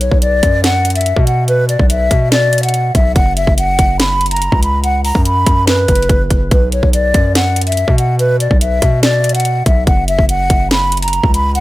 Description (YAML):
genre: hip hop, trap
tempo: 143 BPM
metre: 4/4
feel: half-time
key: B harmonic minor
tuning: A4 = 440 Hz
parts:
  - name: mellow hollow concert flute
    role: melody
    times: 0.0-11.6 s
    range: B4 to B5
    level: -15 LUFS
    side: left 1 dB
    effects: digital delay
  - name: hard-hitting 808-style bass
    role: bass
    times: 0.0-11.6 s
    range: F#1 to B2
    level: -16 LUFS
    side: equal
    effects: none
  - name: trap drum kit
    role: drums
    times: 0.0-11.6 s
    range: hi-hat, kick drum, snare drum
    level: -14 LUFS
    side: equal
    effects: none
room: digital ambience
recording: none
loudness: -10 LUFS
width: side -17 dB against mid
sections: 0.0-11.6 A section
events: none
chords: 0.0 Bm; 3.2 F#sus4; 6.5 Bm; 9.9 F#sus4